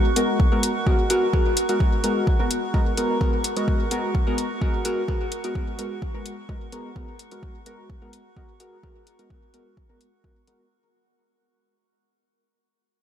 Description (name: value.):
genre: dub techno.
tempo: 128 BPM.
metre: 4/4.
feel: straight.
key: G# minor.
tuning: A4 = 440 Hz.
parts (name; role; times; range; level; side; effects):
deep mellow chord stab; stabs; 0.0-10.6 s; G#3 to A#4; -25 LUFS; left 1 dB; chorus, phaser, sidechain pumping, dub echo.
drifting glass-harmonics texture; texture; 0.0-10.7 s; F#4; -32 LUFS; right 4 dB; chorus, built-in reverb, sidechain pumping.
electronic hi-hat; drums; 0.2-10.6 s; none; -28 LUFS; left 2 dB; overdrive.
electronic kick drum; drums; 0.4-10.3 s; none; -23 LUFS; equal; overdrive.
room: moderate huge ambient reverb, RT60 7.5 s.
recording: dreamy mix soaked in reverb.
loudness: -20 LUFS.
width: side -10 dB against mid.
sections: 0.0-10.7 A section.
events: fade-out 0.0-10.7.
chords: 0.0 G#m9.